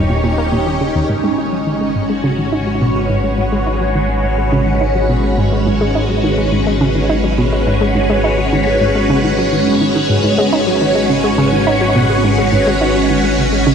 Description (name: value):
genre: ambient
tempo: 105 BPM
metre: 4/4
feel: straight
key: G# minor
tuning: A4 = 440 Hz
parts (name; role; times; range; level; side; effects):
- string machine, full ensemble; sustained chords; 0.0-13.7 s; G#3 to Db5; -15 LUFS; equal; phaser, ensemble chorus
- analog pluck; riff; 0.0-13.7 s; Eb2 to D#4; -18 LUFS; equal; chorus, analog delay
- fat analog bass; bass; 0.0-13.7 s; Eb1 to G#1; -20 LUFS; equal; none
- wind-like tuned noise texture; texture; 0.0-13.7 s; Db5; -33 LUFS; right 2 dB; none
room: wet huge ambient reverb, RT60 7.3 s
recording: none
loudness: -12 LUFS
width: side -7 dB against mid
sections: 0.0-1.1 A section; 1.1-13.7 B section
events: filter sweep on synth arpeggio sound 1.1-13.7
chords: 0.0 Eb7; 1.1 G#m